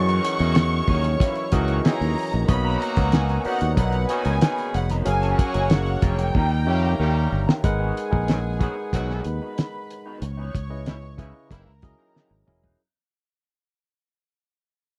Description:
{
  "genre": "lush 1970s-style soul",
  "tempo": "93 BPM",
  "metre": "4/4",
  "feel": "straight",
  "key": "unclear",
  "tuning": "A4 = 439 Hz",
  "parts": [
    { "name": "warm studio violin section", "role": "melody", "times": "0.0-7.3 s", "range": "F#5 to C#6", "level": "-31 LUFS", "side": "equal", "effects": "none" },
    { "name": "dark studio string section", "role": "second line", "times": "0.0-12.8 s", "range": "A#3 to C#6", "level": "-36 LUFS", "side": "equal", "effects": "none" },
    { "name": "barky tine electric piano", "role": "accompaniment", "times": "0.0-12.8 s", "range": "C#3 to F#5", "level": "-31 LUFS", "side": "equal", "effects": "none" },
    { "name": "clear horn section", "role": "stabs", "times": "0.0-11.7 s", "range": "A#2 to G#4", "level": "-35 LUFS", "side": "equal", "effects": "none" },
    { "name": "fingered electric bass", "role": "bass", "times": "0.0-12.7 s", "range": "E1 to F#2", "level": "-26 LUFS", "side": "equal", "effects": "none" },
    { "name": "electric guitar through a small old amp", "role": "riff", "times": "0.1-12.8 s", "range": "E3 to A#4", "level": "-39 LUFS", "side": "equal", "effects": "none" },
    { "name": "cloth-damped thuddy drum kit", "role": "drums", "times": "0.1-12.8 s", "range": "hi-hat, kick drum, snare drum, toms", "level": "-23 LUFS", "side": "equal", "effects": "none" }
  ],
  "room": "studio reverb",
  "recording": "dry, close 1970s-style studio recording",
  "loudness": "-22 LUFS",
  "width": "mono",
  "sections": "0.0-7.6 A section; 7.6-12.8 B section",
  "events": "drum fill 6.3-7.6, 12.2-12.8; fade-out 7.6-12.8",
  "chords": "0.0 F#13; 2.5 Bmaj9; 5.1 F#maj7; 6.3 D#7; 7.6 G#m7; 10.2 C#m9; 11.5 F#13",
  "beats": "0.56 1.20 1.84 | 2.49 3.13 3.77 4.42 | 5.06 5.71 6.35 6.99 | 7.64 8.28 8.93 9.57 | 10.22 10.86 11.51 12.15"
}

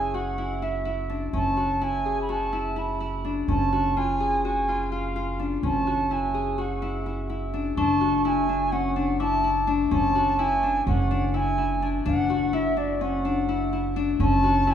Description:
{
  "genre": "contemporary instrumental, chamber music in an uneven meter",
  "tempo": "252 BPM (eighths)",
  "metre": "9/8",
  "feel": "straight",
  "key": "unclear",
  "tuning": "A4 = 435 Hz",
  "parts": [
    { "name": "bright reedy baroque flute", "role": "melody", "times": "0.0-14.7 s", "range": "D5 to B5", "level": "-26 LUFS", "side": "right 1 dB", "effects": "none" },
    { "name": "Celtic harp", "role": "arpeggios", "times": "0.0-14.7 s", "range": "C#4 to G#4", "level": "-26 LUFS", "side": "left 3 dB", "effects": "none" },
    { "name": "upright bass", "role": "bass", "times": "0.0-14.7 s", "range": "F#1", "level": "-29 LUFS", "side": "right 2 dB", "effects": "none" },
    { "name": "glockenspiel with hard plastic mallets", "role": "texture", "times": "7.8-10.1 s", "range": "C#6 to D6", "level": "-36 LUFS", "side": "right 8 dB", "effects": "none" }
  ],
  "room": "wet recital hall reverb, RT60 1.6 s",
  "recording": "heard from further back in the room",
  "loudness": "-22 LUFS",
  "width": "side -9 dB against mid",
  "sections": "0.0-7.8 A section; 7.8-14.7 B section",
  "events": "none",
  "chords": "0.0 F#m7; 3.5 C#/F#; 7.8 Dmaj9/F#",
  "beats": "0.14 0.38 0.62 0.86 1.09 | 1.33 1.57 1.81 2.05 2.29 2.52 2.76 3.00 3.24 | 3.48 3.72 3.96 4.19 4.43 4.67 4.91 5.15 5.39 | 5.62 5.86 6.10 6.34 6.58 6.82 7.06 7.29 7.53 | 7.77 8.01 8.25 8.49 8.72 8.96 9.20 9.44 9.68 | 9.91 10.15 10.39 10.63 10.87 11.11 11.34 11.58 11.82 | 12.06 12.29 12.53 12.77 13.01 13.25 13.48 13.72 13.96 | 14.20 14.44 14.67"
}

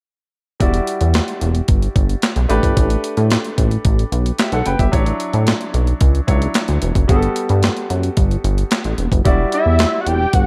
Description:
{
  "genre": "early-eighties boogie funk",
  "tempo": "111 BPM",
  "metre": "4/4",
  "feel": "straight",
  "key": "E dorian",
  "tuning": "A4 = 438 Hz",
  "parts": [
    { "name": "bright grand piano", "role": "accompaniment", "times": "0.6-10.5 s", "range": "F#3 to G5", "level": "-25 LUFS", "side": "equal", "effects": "none" },
    { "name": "chorused synth bass", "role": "bass", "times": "0.6-10.5 s", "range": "E1 to A2", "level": "-19 LUFS", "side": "equal", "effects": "none" },
    { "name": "clean 12-bit digital drum machine", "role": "drums", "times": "0.6-10.5 s", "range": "handclaps, hi-hat, kick drum, snare drum", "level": "-20 LUFS", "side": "equal", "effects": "gated reverb" },
    { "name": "fat analog lead", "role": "melody", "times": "9.5-10.5 s", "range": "E5 to G5", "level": "-20 LUFS", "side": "equal", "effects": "chorus, phaser, slapback echo" }
  ],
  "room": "little or no reverb",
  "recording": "none",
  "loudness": "-17 LUFS",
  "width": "mono",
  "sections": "0.6-9.3 A section; 9.3-10.5 B section",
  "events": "none",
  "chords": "0.6 Em9; 2.5 A9sus4; 4.9 Dmaj9/A; 7.1 Gmaj9; 9.3 Em9",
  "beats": "| 0.60 1.15 1.69 2.23 | 2.77 3.31 3.85 4.39 | 4.93 5.47 6.01 6.55 | 7.09 7.63 8.17 8.71 | 9.25 9.79 10.34"
}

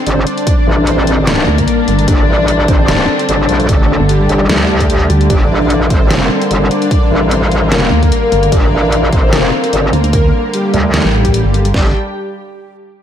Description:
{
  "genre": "heavy wobble dubstep",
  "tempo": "149 BPM",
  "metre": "4/4",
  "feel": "swing 54% on 16ths, half-time",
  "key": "G minor",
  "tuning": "A4 = 441 Hz",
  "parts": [
    { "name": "soft supersaw", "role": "melody", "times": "0.0-11.9 s", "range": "G3 to D5", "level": "-17 LUFS", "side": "left 1 dB", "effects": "ensemble chorus, tape echo" },
    { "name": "dark studio string section", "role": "sustained chords", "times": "0.0-11.9 s", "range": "D3 to G5", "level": "-17 LUFS", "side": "left 2 dB", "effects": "sidechain pumping" },
    { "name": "metallic wobble bass", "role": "bass", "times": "0.1-11.9 s", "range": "G1 to D2", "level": "-14 LUFS", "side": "equal", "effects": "chorus, overdrive" },
    { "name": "dubstep drum kit", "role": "drums", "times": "0.1-11.7 s", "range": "hi-hat, snare drum", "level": "-19 LUFS", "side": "equal", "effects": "none" },
    { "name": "dubstep drum kit", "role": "drums", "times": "0.5-11.8 s", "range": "kick drum, snare drum", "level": "-13 LUFS", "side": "equal", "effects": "none" },
    { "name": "pulsing pluck wobble bass", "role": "bass", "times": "1.5-5.3, 7.9-11.7 s", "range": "G1 to D2", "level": "-12 LUFS", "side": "equal", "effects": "chorus, overdrive" }
  ],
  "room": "moderate lush hall reverb, RT60 1.8 s, digital ambience",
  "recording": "dreamy mix soaked in reverb",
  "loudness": "-9 LUFS",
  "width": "side -9 dB against mid",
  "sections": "0.0-11.7 A section; 11.7-13.0 B section",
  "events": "drop 0.0-11.7",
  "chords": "0.0 G5",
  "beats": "0.07 | 0.47 0.87 1.27 1.68 | 2.08 2.48 2.88 3.29 | 3.69 4.09 4.50 4.90 | 5.30 5.70 6.11 6.51 | 6.91 7.31 7.72 8.12 | 8.52 8.92 9.33 9.73 | 10.13 10.54 10.94 11.34 | 11.74"
}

